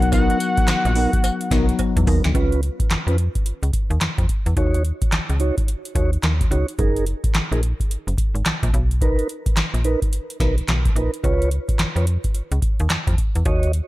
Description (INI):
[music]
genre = R&B, new jack swing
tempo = 108 BPM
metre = 4/4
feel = swing 62% on 16ths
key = unclear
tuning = A4 = 439 Hz
[part]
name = fat analog lead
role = melody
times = 0.0-1.8 s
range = F#5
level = -23 LUFS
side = equal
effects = digital delay
[part]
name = bell-like tine electric piano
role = accompaniment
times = 0.0-2.4 s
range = F#3 to A#4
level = -24 LUFS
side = left 6 dB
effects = phaser
[part]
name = slap-like FM bass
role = bass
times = 0.0-13.8 s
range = F#1 to E#2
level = -20 LUFS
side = equal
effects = none
[part]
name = booming analog drum machine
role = drums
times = 0.0-13.9 s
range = handclaps, hi-hat, kick drum, snare drum, tambourine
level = -20 LUFS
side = equal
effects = gated reverb
[part]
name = mellow tonewheel organ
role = stabs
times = 0.1-13.7 s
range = B3 to D#5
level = -26 LUFS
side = right 2 dB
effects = slow rotary speaker, digital delay
[part]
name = cowbell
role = percussion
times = 0.1-2.0 s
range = none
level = -34 LUFS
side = right 6 dB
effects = none
[sound]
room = little or no reverb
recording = none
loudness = -18 LUFS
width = side -18 dB against mid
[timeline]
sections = 0.0-2.3 A section; 2.3-13.9 B section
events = drum fill 1.8-2.3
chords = 0.0 Bmaj7; 2.3 C#7; 4.6 D#m7; 6.8 F#69; 8.7 Bmaj7; 11.2 C#7